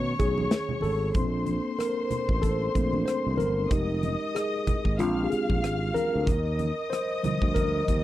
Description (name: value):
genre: lush 1970s-style soul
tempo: 94 BPM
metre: 4/4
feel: swing 58% on 16ths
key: unclear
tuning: A4 = 440 Hz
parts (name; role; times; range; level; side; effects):
- rich studio string section; second line; 0.0-8.0 s; C5 to F6; -33 LUFS; left 1 dB; none
- mellow tine electric piano; accompaniment; 0.0-8.0 s; D3 to C5; -28 LUFS; left 1 dB; medium stereo tremolo
- overdriven fingered electric bass; bass; 0.0-8.0 s; F1 to B2; -29 LUFS; equal; none
- modern studio drum kit; drums; 0.2-8.0 s; hi-hat, kick drum, rim click, snare drum; -27 LUFS; equal; none
- congas; percussion; 0.4-7.7 s; none; -37 LUFS; right 5 dB; none
room: little or no reverb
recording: dry, close 1970s-style studio recording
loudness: -24 LUFS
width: side -14 dB against mid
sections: 0.0-1.2 A section; 1.2-8.0 B section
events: tine electric piano solo 0.0-1.2, 1.2-8.0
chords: 0.0 B9; 1.2 Bbmaj9; 3.7 Fm7; 5.0 Bb7; 6.3 Ebmaj9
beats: 0.52 | 1.16 1.80 2.44 3.08 | 3.72 4.36 5.00 5.64 | 6.28 6.92 7.56